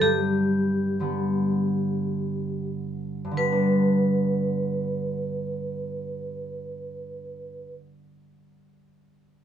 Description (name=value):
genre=celtic folk, Celtic slow air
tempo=45-64 BPM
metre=3/4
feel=rubato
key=G major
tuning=A4 = 439 Hz
part: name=vibraphone with hard mallets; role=melody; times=0.0-7.7 s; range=G4 to B4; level=-28 LUFS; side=right 1 dB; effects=none
part: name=concert harp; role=accompaniment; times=0.0-7.9 s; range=G2 to D4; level=-25 LUFS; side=equal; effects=none
room=wet studio reverb, RT60 0.6 s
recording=band playing live in one room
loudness=-23 LUFS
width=side -9 dB against mid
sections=0.0-3.4 A section; 3.4-7.2 B section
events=slowing down 0.0-3.4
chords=0.0 G